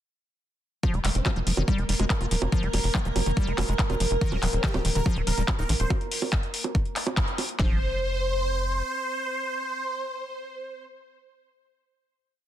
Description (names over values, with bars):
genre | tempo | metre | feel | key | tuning
psychedelic trance | 142 BPM | 4/4 | straight | unclear | A4 = 440 Hz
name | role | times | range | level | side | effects
evolving wavetable pad | sustained chords | 1.5-5.9 s | Bb3 to Bb4 | -34 LUFS | right 2 dB | chorus, built-in reverb, sidechain pumping
liquid acid bass | riff | 0.8-7.8 s | D3 to F4 | -33 LUFS | equal | chorus, auto-pan, sidechain pumping, dub echo
techno drum kit | drums | 0.8-7.7 s | handclaps, kick drum, snare drum | -25 LUFS | equal | none
techno drum kit | drums | 0.8-7.6 s | bongos, handclaps, hi-hat | -29 LUFS | right 1 dB | soft clipping on snare
tight sequencer bass | bass | 0.9-8.8 s | Eb1 to Bb1 | -27 LUFS | equal | none
formant-sweep wobble bass | second line | 1.2-4.7 s | Bb3 to C4 | -43 LUFS | right 2 dB | none
dense compressed supersaw | melody | 4.2-10.9 s | G4 to C5 | -30 LUFS | right 1 dB | phaser, sidechain pumping, ping-pong delay
room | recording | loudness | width
light reverb | dense, heavily limited modern master | -24 LUFS | side -12 dB against mid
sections
0.8-7.6 drop; 7.6-11.0 final chord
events
drop 0.8-7.6; band accent 7.2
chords
0.8 Ebadd9 (rootless); 4.2 Eb5; 7.6 F5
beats
| 0.83 1.26 1.68 2.10 | 2.52 2.95 3.37 3.79 | 4.21 4.64 5.06 5.48 | 5.90 6.33 6.75 7.17 | 7.59 8.02 8.44 8.86 | 9.28 9.71 10.13 10.55